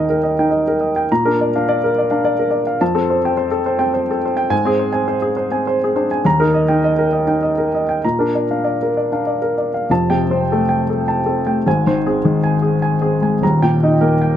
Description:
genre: neoclassical minimalist piano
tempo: 103 BPM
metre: 3/4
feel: rubato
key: Bb major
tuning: A4 = 441 Hz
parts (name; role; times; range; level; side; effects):
- warm upright piano; solo; 0.0-14.4 s; Eb1 to Bb5; -14 LUFS; equal; none
room: light reverb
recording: none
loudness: -14 LUFS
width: side -10 dB against mid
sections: 0.0-9.9 A section; 9.9-14.4 B section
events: none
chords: 0.0 Eb; 1.1 Bb; 2.8 Fadd9; 4.5 Ab; 6.2 Eb; 8.0 Bb; 9.9 Fadd9; 11.7 Ab; 13.4 Eb

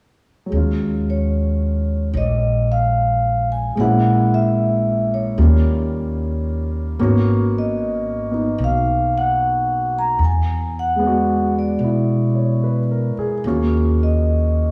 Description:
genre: jazz ballad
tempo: 74 BPM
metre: 4/4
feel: swing 67% on 8ths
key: Eb minor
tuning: A4 = 440 Hz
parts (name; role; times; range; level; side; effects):
- warm grand piano; accompaniment; 0.5-14.7 s; Gb3 to Db5; -24 LUFS; equal; none
- upright bass; bass; 0.5-14.7 s; Ab1 to B2; -22 LUFS; equal; none
- vibraphone with soft mallets; melody; 1.1-14.7 s; Db5 to Bb5; -24 LUFS; equal; none
room: wet recital hall reverb, RT60 1.4 s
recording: recorded in a church or concert hall, studio reverb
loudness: -19 LUFS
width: mono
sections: 0.5-14.7 A section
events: none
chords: 0.5 Ebm11; 3.8 Bbm7b5; 5.4 Eb7; 7.0 Abm11; 10.2 E9; 13.4 Ebm9

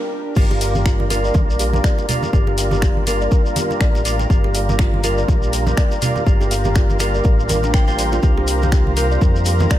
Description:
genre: afro house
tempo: 122 BPM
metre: 4/4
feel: swing 57% on 16ths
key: G minor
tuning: A4 = 440 Hz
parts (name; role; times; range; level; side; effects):
- warm analog pad; sustained chords; 0.0-9.8 s; G3 to Bb5; -29 LUFS; equal; chorus, tremolo, sidechain pumping
- kalimba; arpeggios; 0.4-9.8 s; D4 to G5; -24 LUFS; left 2 dB; sidechain pumping, dub echo
- percussive tonewheel organ; stabs; 0.4-9.8 s; G3 to C5; -24 LUFS; right 3 dB; overdrive, chorus vibrato, stopped rotary speaker, sidechain pumping, dub echo
- dark detuned saw bass; bass; 0.4-9.7 s; G1 to F2; -20 LUFS; equal; sidechain pumping
- electronic kick drum; drums; 0.4-9.8 s; none; -16 LUFS; equal; studio reverb
- house drum kit; drums; 0.4-9.8 s; crash cymbal, finger snaps, hi-hat; -27 LUFS; left 1 dB; studio reverb
- congas; percussion; 0.4-9.7 s; none; -26 LUFS; right 2 dB; none
- shekere; percussion; 0.4-9.8 s; none; -30 LUFS; left 3 dB; none
room: little or no reverb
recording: none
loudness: -15 LUFS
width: side -13 dB against mid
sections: 0.4-9.8 A section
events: break 0.0-0.4; drop 0.4-9.8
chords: 0.4 Gm7; 8.2 C7sus4

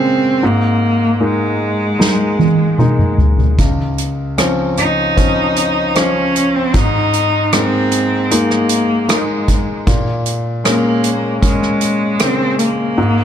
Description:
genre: pop ballad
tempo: 77 BPM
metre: 4/4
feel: straight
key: unclear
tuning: A4 = 440 Hz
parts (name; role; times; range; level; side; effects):
- warm cello; melody; 0.0-13.2 s; Ab3 to Eb4; -16 LUFS; equal; none
- clear concert grand piano; accompaniment; 0.0-13.2 s; Db2 to C5; -17 LUFS; left 1 dB; none
- soft-mallet drum kit; drums; 2.0-12.8 s; hi-hat, kick drum, rim click, snare drum, toms; -16 LUFS; right 1 dB; none
room: light reverb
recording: dark, warm production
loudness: -12 LUFS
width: side -9 dB against mid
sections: 0.0-13.2 A section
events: drum fill 2.0-3.6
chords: 0.4 Absus2; 3.6 Dbmaj7; 6.7 Absus2; 9.9 Bbm7

